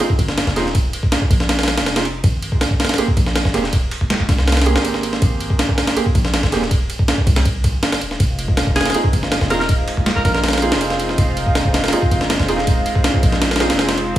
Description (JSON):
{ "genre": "drum and bass, jungle", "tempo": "161 BPM", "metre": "4/4", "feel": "straight", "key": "F minor", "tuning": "A4 = 440 Hz", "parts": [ { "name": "warm baby grand piano", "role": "stabs", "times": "0.0-6.6, 8.9-14.2 s", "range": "Bb3 to Ab4", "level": "-23 LUFS", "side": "right 3 dB", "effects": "dub echo" }, { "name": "breakbeat sampler-style drum kit", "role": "drums", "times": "0.0-14.2 s", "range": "kick drum, ride cymbal, snare drum", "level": "-17 LUFS", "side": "equal", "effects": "none" }, { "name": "warm 808-style bass", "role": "bass", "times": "0.2-14.2 s", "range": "Eb1 to C2", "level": "-20 LUFS", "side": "equal", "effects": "none" }, { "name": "lush unison pad", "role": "sustained chords", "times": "8.2-14.2 s", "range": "Ab3 to F4", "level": "-23 LUFS", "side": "equal", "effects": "chorus" }, { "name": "bright alto saxophone", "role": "melody", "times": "8.8-10.4 s", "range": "Ab4 to Bb4", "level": "-24 LUFS", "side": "equal", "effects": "dub echo" } ], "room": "digital ambience", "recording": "small room ambience", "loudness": "-15 LUFS", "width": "side -13 dB against mid", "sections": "0.0-14.2 A section", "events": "none", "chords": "0.0 F7(no3); 2.2 Abmaj9; 8.2 Fm7" }